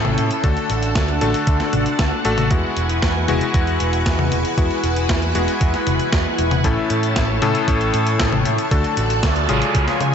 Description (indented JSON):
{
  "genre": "italo disco",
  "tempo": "116 BPM",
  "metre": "4/4",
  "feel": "straight",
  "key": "unclear",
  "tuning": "A4 = 440 Hz",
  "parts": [
    { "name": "string machine, full ensemble", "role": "sustained chords", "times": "0.0-10.1 s", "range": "C#4 to A5", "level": "-22 LUFS", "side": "right 1 dB", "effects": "ensemble chorus" },
    { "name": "clear electric grand piano", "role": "stabs", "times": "0.0-10.1 s", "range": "A2 to A4", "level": "-22 LUFS", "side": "left 4 dB", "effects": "ping-pong delay" },
    { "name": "picked electric bass with an envelope filter", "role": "bass", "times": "0.0-10.1 s", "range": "E1 to C#3", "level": "-22 LUFS", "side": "right 1 dB", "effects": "none" },
    { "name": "clean 12-bit digital drum machine", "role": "drums", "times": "0.0-10.1 s", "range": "hi-hat, snare drum, toms", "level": "-24 LUFS", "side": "left 2 dB", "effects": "gated reverb" },
    { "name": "electronic kick drum", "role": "drums", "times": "0.4-9.9 s", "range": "none", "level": "-20 LUFS", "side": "right 1 dB", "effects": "none" },
    { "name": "noise sweep", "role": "sound effects", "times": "9.0-10.1 s", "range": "none", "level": "-24 LUFS", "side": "right 6 dB", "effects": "none" }
  ],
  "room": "light reverb, digital ambience",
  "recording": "nothing above 7.9 kHz",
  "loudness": "-16 LUFS",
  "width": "side -7 dB against mid",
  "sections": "0.0-10.1 A section",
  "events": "noise sweep 9.0-10.1",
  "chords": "0.4 D; 2.5 Eadd9; 6.6 A; 8.7 D"
}